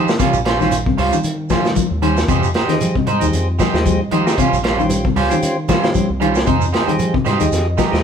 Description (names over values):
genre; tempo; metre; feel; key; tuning
afrobeat; 115 BPM; 4/4; swing 56% on 16ths; F minor; A4 = 440 Hz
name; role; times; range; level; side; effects
mellow electric guitar; arpeggios; 0.0-7.9 s; C3 to F3; -21 LUFS; left 6 dB; none
electric guitar at the edge of break-up; stabs; 0.0-8.0 s; G3 to C5; -20 LUFS; right 4 dB; none
deep dub fingered electric bass; bass; 0.0-8.0 s; Bb1 to F3; -22 LUFS; equal; none
crunchy breakbeat drum kit; drums; 0.1-8.0 s; hi-hat, kick drum, snare drum; -21 LUFS; equal; none
shekere; percussion; 0.1-8.0 s; none; -29 LUFS; right 8 dB; none
congas; percussion; 0.2-8.0 s; none; -25 LUFS; right 1 dB; none
percussive tonewheel organ; accompaniment; 2.7-8.0 s; Db4 to Eb5; -23 LUFS; equal; slow rotary speaker
room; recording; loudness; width
moderate large studio reverb, RT60 1.3 s; band playing live in one room; -14 LUFS; side -7 dB against mid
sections
0.0-8.0 A section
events
none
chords
0.2 Eb13; 2.3 Fm9; 4.4 Eb13; 6.5 Fm9